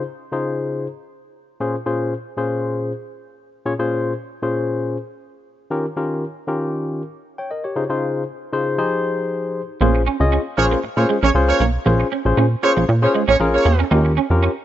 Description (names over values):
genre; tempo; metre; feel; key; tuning
funk; 117 BPM; 4/4; straight; Bb dorian; A4 = 438 Hz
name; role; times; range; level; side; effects
barky tine electric piano; accompaniment; 0.0-14.5 s; Bb2 to G5; -21 LUFS; left 2 dB; overdrive
electric guitar at the edge of break-up; riff; 9.8-14.5 s; Ab3 to Eb4; -24 LUFS; right 9 dB; ensemble chorus
plucky analog bass; bass; 9.8-14.5 s; Bb1 to Bb2; -17 LUFS; right 1 dB; none
warm horn section; second line; 10.6-13.9 s; Bb3 to Db5; -20 LUFS; right 3 dB; none
room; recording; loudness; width
light reverb, digital ambience; rough home demo mix, nothing above 7.6 kHz; -17 LUFS; side -12 dB against mid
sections
0.0-9.8 A section; 9.8-14.6 B section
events
none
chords
0.0 Dbmaj7; 1.6 Bbm7; 5.7 Eb7; 7.8 Dbmaj7; 8.8 Fm7; 9.8 Bbm7; 13.9 Eb7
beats
0.07 0.58 1.09 | 1.60 2.12 2.63 3.14 | 3.66 4.17 4.68 5.19 | 5.71 6.22 6.73 7.25 | 7.76 8.27 8.78 9.30 | 9.81 10.32 10.84 11.35 | 11.86 12.37 12.89 13.40 | 13.91 14.43